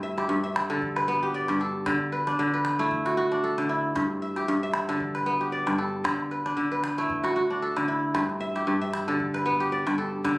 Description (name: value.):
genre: west african traditional, West African string and xylophone music.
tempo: 115 BPM.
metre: 4/4.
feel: swing 56% on 16ths.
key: G major.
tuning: A4 = 439 Hz.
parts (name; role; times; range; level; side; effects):
kora; arpeggios; 0.0-10.4 s; G2 to E5; -24 LUFS; equal; none.
calabash; percussion; 0.2-10.4 s; none; -32 LUFS; equal; none.
room: moderate small room reverb, RT60 0.5 s.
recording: recorded on a phone in the room, studio reverb, compression.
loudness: -24 LUFS.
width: side -22 dB against mid.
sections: 0.0-10.4 A section.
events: none.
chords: 0.0 G; 1.9 D; 3.9 G; 6.0 D; 8.1 G.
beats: 0.29 0.81 1.34 | 1.86 2.38 2.90 3.43 | 3.95 4.47 5.00 5.52 | 6.04 6.57 7.09 7.62 | 8.14 8.67 9.19 9.72 | 10.24.